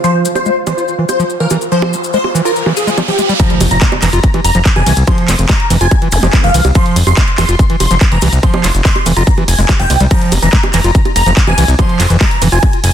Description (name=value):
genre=psychedelic trance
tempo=143 BPM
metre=4/4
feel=straight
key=F harmonic minor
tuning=A4 = 441 Hz
part: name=supersaw stab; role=melody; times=0.0-12.9 s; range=G4 to C6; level=-17 LUFS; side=equal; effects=phaser, sidechain pumping, ping-pong delay
part: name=overdriven acid bass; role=riff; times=0.0-12.6 s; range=E3 to F4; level=-17 LUFS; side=equal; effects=distortion, auto-pan, vintage 12-bit sampler grit, sidechain pumping, ping-pong delay
part: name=maracas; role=percussion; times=0.0-12.9 s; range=none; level=-24 LUFS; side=left 7 dB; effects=none
part: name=downlifter, riser, impact and zap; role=sound effects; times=0.0-6.2 s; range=none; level=-22 LUFS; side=right 1 dB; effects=none
part: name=airy breathy pad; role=texture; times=0.0-3.4 s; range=F4 to F5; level=-23 LUFS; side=right 3 dB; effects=chorus, sidechain pumping
part: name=big-room dance drum kit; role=drums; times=0.4-12.9 s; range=bongos, handclaps, hi-hat, ride cymbal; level=-18 LUFS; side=right 3 dB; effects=none
part: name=electronic kick drum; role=drums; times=3.4-12.7 s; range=none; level=-12 LUFS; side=equal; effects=none
part: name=fat analog bass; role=bass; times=3.6-12.9 s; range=F1 to C2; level=-12 LUFS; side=equal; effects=none
room=little or no reverb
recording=dense, heavily limited modern master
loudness=-9 LUFS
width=side -10 dB against mid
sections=0.0-3.4 A section; 3.4-12.9 B section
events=riser 0.0-3.4; drop 3.4-12.9; impact 3.4-5.1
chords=0.0 F5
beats=| 0.04 0.46 0.88 1.30 | 1.72 2.14 2.56 2.98 | 3.40 3.82 4.24 4.66 | 5.08 5.49 5.91 6.33 | 6.75 7.17 7.59 8.01 | 8.43 8.85 9.27 9.69 | 10.11 10.53 10.95 11.37 | 11.79 12.21 12.63